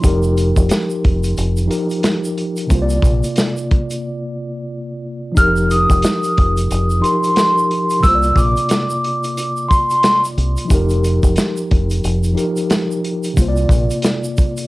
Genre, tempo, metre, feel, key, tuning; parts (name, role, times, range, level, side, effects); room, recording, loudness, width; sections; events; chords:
hip hop, boom-bap hip-hop; 90 BPM; 4/4; swing 59% on 16ths; A4 = 440 Hz
mellow tine electric piano; accompaniment; 0.0-14.7 s; C3 to D5; -20 LUFS; equal; medium stereo tremolo, high-pass filter, low-pass filter, plate reverb
deep dub fingered electric bass; bass; 0.0-13.9 s; F1 to C2; -17 LUFS; equal
crunchy breakbeat drum kit; drums; 0.0-14.7 s; hi-hat, kick drum, snare drum; -17 LUFS; equal
tube shaker; percussion; 0.0-14.7 s; -35 LUFS; right 4 dB
vibraphone with soft mallets; melody; 5.4-10.2 s; C6 to F6; -16 LUFS; equal; high-pass filter, low-pass filter, cassette tape, plate reverb
light reverb; home recording on cassette; -14 LUFS; side -20 dB against mid
0.0-14.7 A section
break 4.0-5.4
0.0 F9sus4; 2.7 C9sus4; 5.4 F9sus4; 8.0 C9sus4; 10.7 F9sus4; 13.4 C9sus4